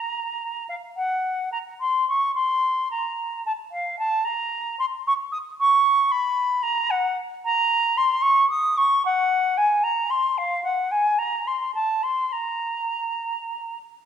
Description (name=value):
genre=classical, baroque-style fantasia for unaccompanied flute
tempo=66-77 BPM (dotted quarters)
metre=6/8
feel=rubato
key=Bb minor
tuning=A4 = 440 Hz
part: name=silver concert flute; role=solo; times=0.0-13.8 s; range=F5 to Eb6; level=-21 LUFS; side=equal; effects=none
room=moderate recital hall reverb, RT60 1.4 s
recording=minimal, uncompressed stereo recording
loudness=-21 LUFS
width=side -8 dB against mid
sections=1.0-14.1 A section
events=none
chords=none